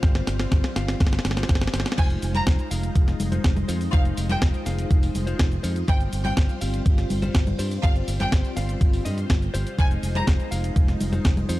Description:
italo disco; 123 BPM; 4/4; straight; F minor; A4 = 440 Hz
string machine, full ensemble; sustained chords; 0.0-11.6 s; G3 to F5; -33 LUFS; equal; phaser, ensemble chorus, shimmer reverb
direct-recorded clean electric guitar; stabs; 0.0-11.6 s; G3 to F5; -34 LUFS; left 3 dB; shimmer reverb
overdriven fingered electric bass; bass; 0.0-11.6 s; F1 to G2; -26 LUFS; equal
clean 12-bit digital drum machine; drums; 0.0-11.6 s; cabasa, congas, crash cymbal, hi-hat, snare drum; -28 LUFS; equal
electronic kick drum; drums; 0.0-11.3 s; -20 LUFS; equal
clear chamber violin section; melody; 2.0-10.2 s; F5 to Bb5; -32 LUFS; right 1 dB; tape echo, shimmer reverb
digital ambience; dry, gritty hardware recording; -20 LUFS; side -17 dB against mid
0.0-2.0 A section; 2.0-11.6 B section
drum fill 0.0-2.0
0.0 Csus4/G; 2.0 Fm7; 5.9 Csus4/G; 9.8 Fm7

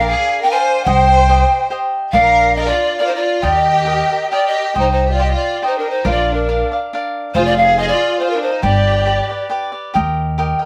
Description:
mexican folk, mariachi; 139 BPM; 3/4; swing 54% on 8ths, rubato; Eb major, C minor from 4.8 s; A4 = 440 Hz
mellow pan flute; melody; 0.0-9.5 s; Bb4 to Ab5; -18 LUFS; equal; slapback echo
rich studio violin section; second line; 0.0-9.5 s; D4 to C5; -24 LUFS; equal
cavaquinho; accompaniment; 0.0-10.7 s; D4 to G5; -22 LUFS; equal
upright bass; bass; 0.0-10.5 s; F1 to Eb2; -21 LUFS; equal
moderate studio reverb, RT60 0.6 s; band playing live in one room; -15 LUFS; mono
0.0-4.8 A section; 4.8-10.7 B section
0.0 Bb; 0.9 Cm; 2.1 Bb; 3.4 Eb; 4.8 Cm; 6.1 Bb; 7.3 Fm; 8.6 G; 9.9 Eb

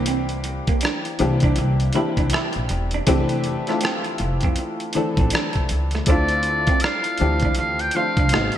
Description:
R&B, neo-soul; 80 BPM; 4/4; swing 61% on 16ths; D minor; A4 = 439 Hz
semi-hollow electric guitar; second line; 0.0-8.5 s; A3 to F4; -28 LUFS; right 7 dB; lush chorus
clear upright piano; accompaniment; 0.0-8.6 s; E3 to A4; -24 LUFS; left 3 dB
upright bass; bass; 0.0-8.5 s; E1 to F2; -23 LUFS; equal
dusty soul sampler-style drum kit; drums; 0.1-8.6 s; hi-hat, kick drum, rim click; -23 LUFS; equal; gated reverb
trumpet with metal mute; melody; 6.1-8.6 s; D5 to G5; -22 LUFS; equal
light reverb, studio ambience; bright 1980s-style digital production; -18 LUFS; side -11 dB against mid
0.0-8.6 A section
0.0 C9; 3.1 Fmaj13; 6.1 Dm9

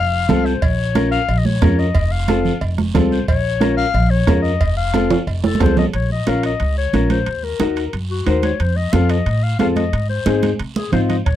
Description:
latin, cumbia; 181 BPM; 4/4; straight; Bb minor from 5.9 s; A4 = 440 Hz
mellow clarinet; second line; 0.0-11.4 s; Gb4 to F5; -23 LUFS; left 8 dB
upright bass; bass; 0.0-11.4 s; F1 to C3; -19 LUFS; equal
mellow electric guitar; accompaniment; 0.3-11.2 s; C4 to C5; -19 LUFS; left 2 dB
congas; percussion; 0.3-11.4 s; -22 LUFS; right 4 dB
cowbell and timbales; percussion; 0.3-11.4 s; -26 LUFS; right 7 dB
guiro; percussion; 0.3-11.4 s; -36 LUFS; right 8 dB
bombo; percussion; 0.6-5.8, 11.3-11.4 s; -19 LUFS; right 2 dB
little or no reverb; dry, close 1970s-style studio recording; -15 LUFS; side -12 dB against mid
0.0-5.9 A section; 5.9-11.4 B section
clarinet solo 0.0-5.9, 5.9-11.4; drum fill 5.1-5.9, 10.4-11.3
0.0 F; 0.6 Bbm; 2.0 F; 3.3 Bbm; 4.6 F; 5.9 Bbm; 7.3 Ebm; 8.6 F7; 9.9 Ab

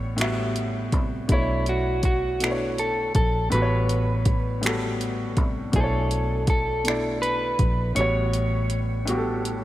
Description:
slow six-eight R&B; 54 BPM (dotted quarters); 6/8; straight; B minor; A4 = 441 Hz
clean electric guitar; melody; 0.0-9.4 s; E4 to C#5; -28 LUFS; equal
clear grand piano; accompaniment; 0.0-9.6 s; A2 to E5; -27 LUFS; equal
vintage muted fingered electric bass; bass; 0.0-9.6 s; A1 to C2; -27 LUFS; equal
smooth R&B drum kit; drums; 0.2-9.6 s; finger snaps, hi-hat, kick drum; -25 LUFS; equal; overdrive
moderate lush hall reverb, RT60 2.9 s; big arena sound; -21 LUFS; side -15 dB against mid
0.0-9.6 A section
drum fill 8.0-9.6
0.0 A13; 1.3 Bm11; 3.5 A13; 5.7 Bm11; 8.0 A13

